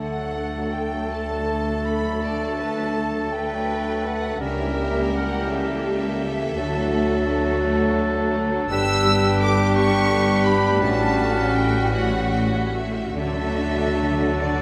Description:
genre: classical, slow romantic movement for symphony orchestra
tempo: 46-58 BPM (dotted quarters)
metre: 12/8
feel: rubato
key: D major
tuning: A4 = 440 Hz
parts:
  - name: rich symphonic violin section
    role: melody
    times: 0.0-14.6 s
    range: D5 to E6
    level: -34 LUFS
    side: equal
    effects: none
  - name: clear oboe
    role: second line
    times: 0.0-14.6 s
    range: A4 to B4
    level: -32 LUFS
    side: equal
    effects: none
  - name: large flute ensemble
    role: second line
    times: 0.0-14.6 s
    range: D5 to E6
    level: -34 LUFS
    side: equal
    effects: none
  - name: warm clarinet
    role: second line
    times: 0.0-14.6 s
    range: C#4 to D4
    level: -33 LUFS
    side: equal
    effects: none
  - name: bright symphonic viola section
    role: accompaniment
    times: 0.0-14.6 s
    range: C#3 to A4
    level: -34 LUFS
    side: equal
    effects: none
  - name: warm bassoon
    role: accompaniment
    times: 0.0-14.6 s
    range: F#3 to A3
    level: -30 LUFS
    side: equal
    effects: none
  - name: warm French horn section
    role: sustained chords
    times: 0.0-14.6 s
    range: A3 to A4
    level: -30 LUFS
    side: equal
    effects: none
  - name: concert harp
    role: arpeggios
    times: 0.0-14.6 s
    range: G2 to E5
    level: -35 LUFS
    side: equal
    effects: none
  - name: rich symphonic cello section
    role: bass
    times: 0.0-14.6 s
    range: C#2 to D3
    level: -30 LUFS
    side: equal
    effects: none
  - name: rich symphonic double bass section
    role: bass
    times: 0.0-14.6 s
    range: G1 to D2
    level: -31 LUFS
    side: equal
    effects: none
  - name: rich symphonic violin section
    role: second line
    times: 2.2-14.6 s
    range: F#4 to D5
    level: -35 LUFS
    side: equal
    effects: none
  - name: timpani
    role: percussion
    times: 13.2-14.6 s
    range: D3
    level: -36 LUFS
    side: equal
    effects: none
room: moderate scoring stage reverb, RT60 1.5 s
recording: faint mains hum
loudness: -22 LUFS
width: mono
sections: 0.0-14.6 A section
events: timpani fill 13.2-14.6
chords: 0.0 D; 4.4 C#dim7; 6.6 D; 8.7 G; 10.8 A13; 13.2 D

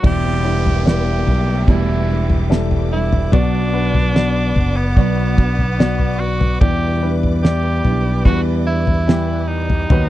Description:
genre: pop ballad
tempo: 73 BPM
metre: 4/4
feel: straight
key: E minor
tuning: A4 = 440 Hz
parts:
  - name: warm grand piano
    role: accompaniment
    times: 0.0-10.1 s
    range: B2 to D5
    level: -23 LUFS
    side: left 6 dB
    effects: none
  - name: warm studio string section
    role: sustained chords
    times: 0.0-10.1 s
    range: B4 to D#6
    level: -32 LUFS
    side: right 2 dB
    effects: none
  - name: nylon-string guitar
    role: arpeggios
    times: 0.0-10.1 s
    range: E2 to F#4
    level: -27 LUFS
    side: right 14 dB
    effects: none
  - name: fingered electric bass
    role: bass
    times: 0.0-10.1 s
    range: E1 to E2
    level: -18 LUFS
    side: equal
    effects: none
  - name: damped 70s drum kit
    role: drums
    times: 0.0-10.1 s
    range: crash cymbal, kick drum, snare drum, toms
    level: -16 LUFS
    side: equal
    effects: none
  - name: downlifter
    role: sound effects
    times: 0.0-6.6 s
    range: none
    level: -30 LUFS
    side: right 2 dB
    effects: none
  - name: bright tenor saxophone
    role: melody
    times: 0.1-10.1 s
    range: B3 to G4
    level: -23 LUFS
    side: right 2 dB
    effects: none
room: little or no reverb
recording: dry, close 1970s-style studio recording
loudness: -14 LUFS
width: side -14 dB against mid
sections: 0.0-10.1 A section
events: none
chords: 0.0 Em7; 3.3 Bm; 6.6 Em7

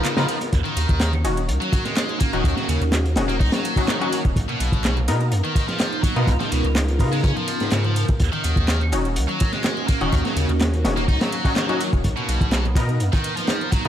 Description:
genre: breakbeat, breaks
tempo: 125 BPM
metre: 4/4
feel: straight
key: Eb minor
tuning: A4 = 440 Hz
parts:
  - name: phased analog pad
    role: sustained chords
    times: 0.0-13.9 s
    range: Db3 to Bb4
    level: -29 LUFS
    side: right 1 dB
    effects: phaser, chorus, sidechain pumping
  - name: heavy high-gain guitar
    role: riff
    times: 0.0-13.9 s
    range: B2 to Eb4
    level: -26 LUFS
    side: equal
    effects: distortion, tape echo
  - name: orchestra-hit-like synth stab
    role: stabs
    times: 0.0-13.9 s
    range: Cb4 to Bb4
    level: -28 LUFS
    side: left 2 dB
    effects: built-in reverb, tape echo
  - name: saturated sub bass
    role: bass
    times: 0.0-13.9 s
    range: Eb1 to Db3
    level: -22 LUFS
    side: equal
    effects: none
  - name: crunchy breakbeat drum kit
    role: drums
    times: 0.0-13.8 s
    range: hi-hat, kick drum, snare drum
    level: -22 LUFS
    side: equal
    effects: none
  - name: house drum kit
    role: drums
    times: 0.0-13.9 s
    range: handclaps, hi-hat, ride cymbal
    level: -33 LUFS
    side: right 1 dB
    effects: none
room: little or no reverb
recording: dark, warm production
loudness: -18 LUFS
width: side -10 dB against mid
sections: 0.0-13.9 A section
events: none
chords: 0.0 Db13; 0.5 Ebm7; 4.4 Bmaj7; 6.3 Db13; 8.2 Ebm7; 12.0 Bmaj7

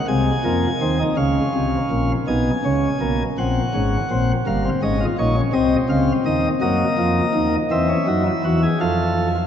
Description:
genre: classical, baroque-style 3-part fugue for pipe organ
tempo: 55 BPM (dotted quarters)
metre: 6/8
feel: straight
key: unclear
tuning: A4 = 441 Hz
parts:
  - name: chamber organ, principal chorus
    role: solo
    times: 0.0-9.5 s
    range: G1 to G#5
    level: -17 LUFS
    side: equal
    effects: none
room: wet cathedral reverb, RT60 6.7 s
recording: nothing above 7.8 kHz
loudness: -17 LUFS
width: side -9 dB against mid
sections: 0.0-2.3 A section; 2.3-9.5 B section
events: none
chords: 0.1 G#/B#; 1.2 C#; 2.3 C#5/B; 3.4 F#; 4.5 D#7/G; 5.5 C#maj9/B#; 6.6 Ebm; 7.7 Gb5/E; 8.8 F

